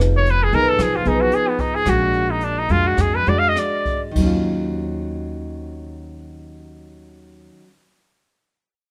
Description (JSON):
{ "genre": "bossa nova", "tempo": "98-116 BPM", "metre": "4/4", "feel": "straight", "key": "Eb minor", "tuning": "A4 = 441 Hz", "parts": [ { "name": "nylon-string guitar", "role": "accompaniment", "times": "0.0-7.8 s", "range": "Bb2 to Ab4", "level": "-25 LUFS", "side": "equal", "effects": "none" }, { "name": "upright bass", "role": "bass", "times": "0.0-7.5 s", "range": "F1 to F2", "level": "-26 LUFS", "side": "equal", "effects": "none" }, { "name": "jazz brush drum kit", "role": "drums", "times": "0.0-4.3 s", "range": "crash cymbal, hi-hat, kick drum, rim click", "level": "-30 LUFS", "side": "equal", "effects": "none" }, { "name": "bright trumpet", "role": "melody", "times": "0.2-4.0 s", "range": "Cb4 to F5", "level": "-22 LUFS", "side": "equal", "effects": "none" } ], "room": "light reverb", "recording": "band playing live in one room", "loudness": "-19 LUFS", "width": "mono", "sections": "0.0-4.2 A section; 4.2-8.9 B section", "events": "slowing down 0.0-4.2; trumpet solo 0.0-4.2", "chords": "0.0 Fm7b5; 1.9 Bb7b13; 4.2 Ebm9" }